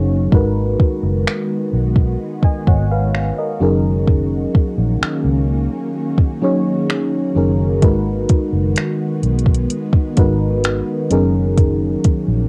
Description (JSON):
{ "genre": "contemporary R&B", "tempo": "64 BPM", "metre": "4/4", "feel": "straight", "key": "G# minor", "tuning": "A4 = 436 Hz", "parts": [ { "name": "mellow FM electric piano", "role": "accompaniment", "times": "0.0-12.5 s", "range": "F#3 to G#5", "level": "-22 LUFS", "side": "equal", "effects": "chorus, cassette tape" }, { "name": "ethereal airy pad", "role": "sustained chords", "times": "0.0-12.5 s", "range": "D#3 to F#4", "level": "-28 LUFS", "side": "equal", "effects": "ensemble chorus, built-in reverb, cassette tape" }, { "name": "vintage muted fingered electric bass", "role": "bass", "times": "0.0-12.5 s", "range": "F#1 to C#2", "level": "-20 LUFS", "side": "equal", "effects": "none" }, { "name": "smooth R&B drum kit", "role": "drums", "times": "0.3-12.3 s", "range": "finger snaps, hi-hat, kick drum", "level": "-17 LUFS", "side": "equal", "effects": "none" } ], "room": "light reverb", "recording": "home recording on cassette", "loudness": "-17 LUFS", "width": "mono", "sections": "0.3-12.5 A section", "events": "break 0.0-0.3", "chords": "0.3 G#m7; 3.6 F#6; 7.8 G#m7; 11.1 F#6" }